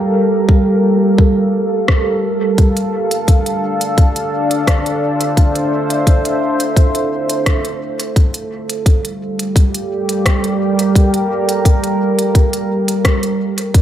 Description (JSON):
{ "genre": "ambient dub", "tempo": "86 BPM", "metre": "4/4", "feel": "straight", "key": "unclear", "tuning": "A4 = 440 Hz", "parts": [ { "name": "deep dark ambient pad", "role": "sustained chords", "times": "0.0-13.8 s", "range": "G3 to F5", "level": "-15 LUFS", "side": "right 1 dB", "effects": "chorus, built-in reverb" }, { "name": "electronic kick drum", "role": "drums", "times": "0.5-13.8 s", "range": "none", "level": "-11 LUFS", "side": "equal", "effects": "none" }, { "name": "organic electronic drum kit", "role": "drums", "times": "1.9-13.8 s", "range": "hi-hat, rim click", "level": "-22 LUFS", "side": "equal", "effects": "dub echo" }, { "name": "drifting glass-harmonics texture", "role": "texture", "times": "13.7-13.8 s", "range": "D5", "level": "-36 LUFS", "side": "left 3 dB", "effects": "none" } ], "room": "moderate echo chamber reverb, RT60 1.9 s", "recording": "none", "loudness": "-12 LUFS", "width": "side -11 dB against mid", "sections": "0.0-13.7 A section", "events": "none", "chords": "0.0 Gm7; 2.6 Dm7; 8.2 Gm7", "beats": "0.49 1.19 1.89 | 2.58 3.28 3.98 4.68 | 5.37 6.07 6.77 7.47 | 8.16 8.86 9.56 10.26 | 10.96 11.65 12.35 13.05 | 13.74" }